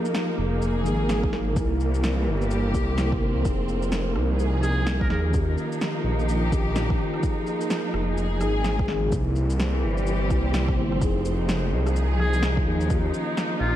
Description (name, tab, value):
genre	future garage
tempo	127 BPM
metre	4/4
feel	swing 60% on 16ths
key	F minor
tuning	A4 = 440 Hz
part	muted felt-like synth keys	accompaniment	0.0-13.8 s	C3 to Bb4	-29 LUFS	left 2 dB	chorus, sidechain pumping, low-pass filter, diffuse ambient delay
part	warm studio string section	sustained chords	0.0-13.8 s	E3 to Ab4	-28 LUFS	right 1 dB	sidechain pumping
part	electronic shaker, snare drum and rim click	drums	0.1-13.5 s	none	-32 LUFS	equal	overdrive, vintage 12-bit sampler grit, studio reverb
part	swelling detuned saw bass	bass	0.4-13.8 s	F1 to Eb2	-24 LUFS	equal	sidechain pumping
part	electronic kick drum	drums	1.2-13.0 s	none	-26 LUFS	equal	overdrive, vintage 12-bit sampler grit, studio reverb
part	trumpet with metal mute	melody	4.6-5.2, 12.2-13.8 s	F4 to Bb4	-32 LUFS	equal	ping-pong delay
room	moderate lush hall reverb, RT60 1.8 s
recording	dreamy mix soaked in reverb, vinyl crackle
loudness	-22 LUFS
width	side -12 dB against mid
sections	0.0-11.0 A section; 11.0-13.8 B section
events	none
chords	0.0 Fm7; 1.6 C7; 3.5 Fm7; 5.3 Eb9; 7.2 Fm7; 9.1 C7; 11.0 Fm7; 12.9 Eb9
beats	0.14 0.62 1.09 | 1.56 2.03 2.51 2.98 | 3.45 3.92 4.40 4.87 | 5.34 5.81 6.29 6.76 | 7.23 7.70 8.18 8.65 | 9.12 9.59 10.06 10.54 | 11.01 11.48 11.96 12.43 | 12.90 13.37